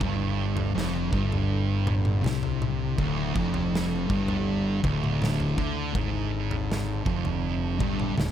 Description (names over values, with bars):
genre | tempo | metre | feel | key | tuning
stoner and doom metal | 81 BPM | 4/4 | straight | D minor | A4 = 440 Hz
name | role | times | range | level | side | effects
ensemble organ-string | sustained chords | 0.0-8.3 s | D3 to A4 | -39 LUFS | right 2 dB | phaser, ensemble chorus
thick fuzz guitar | riff | 0.0-8.3 s | D2 to D3 | -28 LUFS | left 4 dB | distortion
thick fuzz guitar | riff | 0.0-8.3 s | D2 to D3 | -30 LUFS | right 10 dB | distortion
fuzz fingered electric bass | bass | 0.0-8.3 s | D1 to D2 | -32 LUFS | equal | overdrive
big rock drum kit | drums | 0.0-8.3 s | kick drum, snare drum, toms | -30 LUFS | equal | none
room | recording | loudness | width
small room ambience | none | -24 LUFS | side -10 dB against mid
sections
0.0-8.3 A section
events
none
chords
0.0 Dm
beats
| 0.01 0.76 1.50 2.24 | 2.98 3.72 4.46 5.21 | 5.95 6.69 7.43 8.17